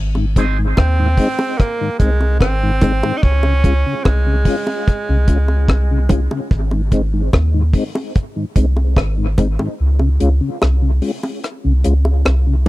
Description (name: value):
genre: dub reggae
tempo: 73 BPM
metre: 4/4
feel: straight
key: Ab major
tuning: A4 = 439 Hz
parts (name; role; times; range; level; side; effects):
- soft dub sub bass; bass; 0.0-12.7 s; Ab1 to Eb2; -15 LUFS; equal; none
- mellow tonewheel organ; accompaniment; 0.2-12.7 s; Ab2 to F4; -22 LUFS; left 2 dB; chorus vibrato, slow rotary speaker, dub echo
- bongos; percussion; 0.2-12.7 s; none; -23 LUFS; right 1 dB; dub echo
- electric guitar with an envelope filter; accompaniment; 0.4-0.6 s; C4 to Ab4; -27 LUFS; right 3 dB; dub echo
- deep reggae drum kit; drums; 0.4-12.7 s; hi-hat, kick drum, rim click; -16 LUFS; equal; none
- breathy tenor saxophone; melody; 0.8-6.1 s; Ab3 to Eb4; -22 LUFS; right 3 dB; dub echo
room: little or no reverb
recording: dry, close 1970s-style studio recording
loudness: -14 LUFS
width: side -18 dB against mid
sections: 0.0-12.7 A section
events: break 0.0-12.7; kick muted 9.8-12.7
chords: 0.0 Ab; 3.2 Db; 6.5 Ab; 9.8 Db